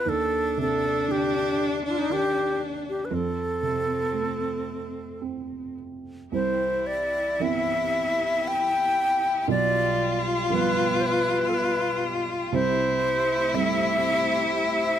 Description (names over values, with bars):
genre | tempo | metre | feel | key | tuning
celtic folk, Celtic slow air | 58 BPM | 3/4 | uneven beats, rubato | unclear | A4 = 439 Hz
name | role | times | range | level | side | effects
wooden flute | melody | 0.0-15.0 s | Eb4 to G5 | -25 LUFS | left 1 dB | none
rich cello | second line | 0.0-15.0 s | C4 to F4 | -28 LUFS | left 2 dB | none
felt-muted upright piano | accompaniment | 0.0-15.0 s | B1 to C4 | -30 LUFS | right 7 dB | none
warm studio string section | sustained chords | 6.3-15.0 s | B2 to C5 | -34 LUFS | left 2 dB | none
room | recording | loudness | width
light reverb | close, detailed microphones | -22 LUFS | side -10 dB against mid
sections
0.0-6.3 A section; 6.3-15.0 B section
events
none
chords
0.1 Cmadd9/Eb; 3.1 F; 6.3 Cmaj7; 9.5 G7/B; 12.5 Am7/C